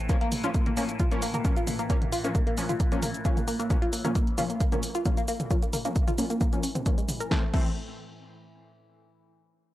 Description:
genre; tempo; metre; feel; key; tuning
driving peak-time techno; 133 BPM; 4/4; straight; unclear; A4 = 439 Hz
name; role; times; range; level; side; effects
overtone-sweeping drone; drone; 0.0-7.4 s; A2 to E3; -40 LUFS; equal; chorus, built-in reverb, phaser, sidechain pumping
analog pluck; riff; 0.1-7.7 s; G#3 to Bb4; -31 LUFS; equal; chorus, phaser, overdrive, sidechain pumping, analog delay
rave stab; stabs; 0.1-7.7 s; E3 to Db4; -34 LUFS; left 1 dB; chorus, built-in reverb, cassette tape, sidechain pumping, analog delay
electronic kick drum; drums; 0.1-7.6 s; none; -26 LUFS; equal; none
punchy analog drum machine; drums; 0.1-7.6 s; crash cymbal, hi-hat, shaker, snare drum, toms; -34 LUFS; equal; sidechain pumping on hats, sidechain pumping on perc, sidechain pumping on toms, sidechain pumping on cymbals
room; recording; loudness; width
digital ambience; dry, gritty hardware recording, cassette tape; -24 LUFS; side -15 dB against mid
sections
0.0-7.3 A section; 7.3-9.1 B section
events
filter sweep on synth arpeggio sound 0.0-7.3; filter sweep on synth stab 0.0-7.3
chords
0.1 Bbm; 7.3 Am

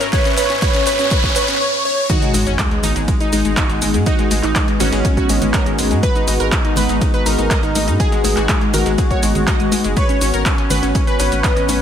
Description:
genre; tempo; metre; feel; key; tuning
progressive house; 122 BPM; 4/4; straight; G# minor; A4 = 440 Hz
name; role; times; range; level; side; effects
plucky unison lead; melody; 0.0-11.8 s; C#4 to C#5; -22 LUFS; equal; analog chorus, dub echo
warm analog pad; sustained chords; 0.0-11.8 s; G#2 to E5; -24 LUFS; right 1 dB; chorus, sidechain pumping
analog pluck; arpeggios; 0.0-11.8 s; G#3 to D#5; -21 LUFS; left 1 dB; chorus, sidechain pumping, ping-pong delay
deep house drum kit; drums; 0.0-11.8 s; crash cymbal, handclaps, hi-hat, shaker, snare drum; -22 LUFS; right 1 dB; overdrive, high-pass filter on snare, studio reverb, high-pass filter on hats, high-pass filter on perc, high-pass filter on cymbals
riser and sub drop; sound effects; 0.0-4.1 s; none; -24 LUFS; equal; none
electronic kick drum; drums; 0.1-11.5 s; none; -18 LUFS; equal; overdrive, studio reverb
breakbeat sampler-style drum kit; drums; 2.1-11.8 s; ride cymbal, snare drum; -32 LUFS; right 4 dB; none
saturated sub bass; bass; 2.3-11.8 s; F#1 to G#2; -20 LUFS; equal; sidechain pumping
bongos and congas; percussion; 2.3-11.8 s; none; -27 LUFS; left 5 dB; sidechain pumping on perc
room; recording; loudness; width
light reverb, digital ambience; none; -14 LUFS; side -9 dB against mid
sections
0.0-2.1 A section; 2.1-11.8 B section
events
build-up 0.0-2.1; drum fill 0.0-1.6; riser 0.0-2.1; filter sweep on analog synth pad 0.0-2.1; filter sweep on digital synth lead 0.0-2.1; drop 2.1-11.8; impact 2.1-4.1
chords
0.0 F#sus4/G#; 2.1 G#m7; 10.0 F#sus4/G#

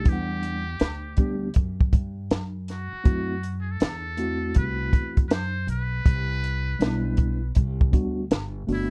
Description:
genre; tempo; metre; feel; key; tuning
hip hop, jazz-hop; 80 BPM; 4/4; swing 65% on 16ths; unclear; A4 = 440 Hz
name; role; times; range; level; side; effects
trumpet with metal mute; melody; 0.0-8.9 s; E4 to C5; -36 LUFS; equal; none
mellow tine electric piano; accompaniment; 0.0-8.9 s; G3 to F#5; -31 LUFS; equal; none
upright bass; bass; 0.0-8.9 s; G1 to G2; -32 LUFS; equal; none
compact cocktail drum kit; drums; 0.1-8.9 s; hi-hat, kick drum, snare drum; -23 LUFS; equal; vintage 12-bit sampler grit
room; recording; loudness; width
little or no reverb; dark, warm production; -25 LUFS; mono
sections
0.0-8.9 A section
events
none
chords
0.1 Em9; 3.1 F#m7b5; 6.1 Cmaj9

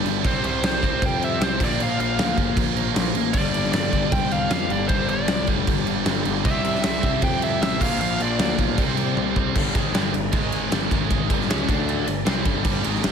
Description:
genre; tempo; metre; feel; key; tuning
hard rock; 155 BPM; 4/4; straight; G minor; A4 = 441 Hz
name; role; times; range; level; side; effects
overdriven tonewheel organ; sustained chords; 0.0-13.1 s; G3 to E5; -36 LUFS; right 1 dB; none
crunchy overdriven guitar; riff; 0.0-13.1 s; G2 to D4; -27 LUFS; left 10 dB; none
overdriven electric guitar; riff; 0.0-13.1 s; G2 to D4; -27 LUFS; right 12 dB; slapback echo
picked electric bass; bass; 0.0-13.1 s; F1 to F2; -28 LUFS; equal; none
big rock drum kit; drums; 0.1-13.1 s; crash cymbal, kick drum, ride cymbal, snare drum, toms; -24 LUFS; equal; none
biting lead guitar; melody; 0.3-8.6 s; C5 to G5; -27 LUFS; right 1 dB; overdrive, slapback echo, tape echo
room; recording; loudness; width
moderate lush hall reverb, RT60 2.1 s; big arena sound; -19 LUFS; side -7 dB against mid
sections
0.0-9.5 A section; 9.5-13.1 B section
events
drum fill 9.2-9.5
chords
0.2 C5; 1.6 Bb5; 3.3 G5; 6.4 C; 7.8 Bb; 8.8 C5; 9.5 G5; 10.3 Ab5; 10.7 G5; 10.9 Ab5; 11.3 G5; 11.7 D5; 12.1 G5

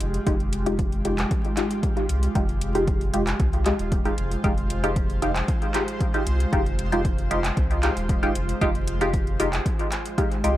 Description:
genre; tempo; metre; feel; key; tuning
dub techno; 115 BPM; 4/4; straight; F minor; A4 = 439 Hz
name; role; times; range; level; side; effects
granular cloud pad; sustained chords; 0.0-10.6 s; Ab3 to C5; -31 LUFS; right 1 dB; built-in reverb, sidechain pumping
warm sub bass; bass; 0.0-10.6 s; Eb1 to C2; -26 LUFS; equal; tube saturation, sidechain pumping
deep house drum kit; drums; 0.0-10.5 s; handclaps, hi-hat; -33 LUFS; equal; overdrive, dub echo
filtered dub chord stab; stabs; 0.3-10.6 s; Ab3 to G4; -26 LUFS; equal; chorus, phaser, sidechain pumping, dub echo
electronic kick drum; drums; 0.3-10.3 s; none; -25 LUFS; equal; overdrive
room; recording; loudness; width
light reverb; echo-heavy mix, vinyl crackle; -21 LUFS; side -14 dB against mid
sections
0.0-10.6 A section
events
none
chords
0.0 Fm9

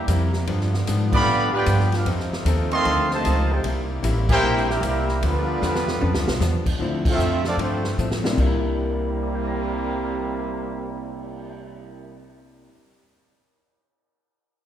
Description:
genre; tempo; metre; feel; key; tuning
jazz, big band swing; 152 BPM; 4/4; swing 64% on 8ths; C mixolydian from 6.8 s; A4 = 440 Hz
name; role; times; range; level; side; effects
warm trumpet section; melody; 0.0-8.0 s; G3 to C6; -24 LUFS; right 1 dB; none
bright trombone section; second line; 0.0-12.3 s; C3 to G4; -28 LUFS; right 2 dB; none
muted trombone section; sustained chords; 0.0-6.8 s; C3 to F4; -34 LUFS; equal; none
upright bass; bass; 0.0-12.7 s; A1 to A2; -24 LUFS; equal; none
archtop guitar, miked and amplified; accompaniment; 0.1-12.8 s; G2 to A4; -31 LUFS; left 2 dB; none
swinging big-band drum kit; drums; 0.1-11.5 s; crash cymbal, cymbal swell, hi-hat, kick drum, ride cymbal, snare drum, toms; -28 LUFS; equal; none
warm grand piano; accompaniment; 6.8-13.3 s; C3 to Bb6; -30 LUFS; left 3 dB; none
room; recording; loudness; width
moderate concert hall reverb, RT60 1.7 s; recorded in a church or concert hall; -20 LUFS; side -10 dB against mid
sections
0.0-6.8 A section; 6.8-8.4 B section; 8.4-11.5 C section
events
band accent 1.1, 4.2, 7.0; drum fill 5.6-6.4, 8.0-8.4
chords
0.5 G7; 2.1 F7; 3.6 C7; 5.2 G7; 6.8 Dm9; 7.6 G9sus4; 8.4 C7

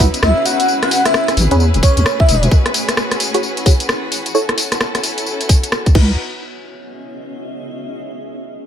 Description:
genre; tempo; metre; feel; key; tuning
UK garage, two-step garage; 131 BPM; 4/4; swing 62% on 16ths; C# minor; A4 = 440 Hz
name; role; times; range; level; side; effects
warm symphonic violin section; sustained chords; 0.0-6.2 s; C#4 to B4; -24 LUFS; left 1 dB; sidechain pumping
punchy chord stab; stabs; 0.0-6.1 s; C#4 to C#5; -19 LUFS; right 1 dB; chorus, tape echo
deep soft wobble bass; bass; 0.0-2.5, 6.0-6.2 s; E1 to E2; -14 LUFS; equal; chorus
electronic kick drum; drums; 0.0-6.1 s; none; -11 LUFS; equal; none
garage drum kit; drums; 0.0-6.1 s; crash cymbal, hi-hat, rim click, tambourine; -19 LUFS; left 1 dB; none
granular cloud pad; texture; 0.0-8.0 s; A3 to E6; -27 LUFS; left 1 dB; built-in reverb, sidechain pumping
airy dreamy lead; melody; 0.2-2.3 s; C#5 to F#5; -17 LUFS; left 1 dB; chorus, tape echo
room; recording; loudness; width
light reverb, digital ambience; none; -12 LUFS; side -9 dB against mid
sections
0.0-6.2 A section; 6.2-8.0 B section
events
fade-out on ambient pad 0.0-6.2; filter sweep on synth stab 0.0-6.2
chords
0.0 C#m11; 0.7 Amaj9; 2.3 E6; 4.3 B9sus4; 6.0 C#m11; 6.2 C#madd9

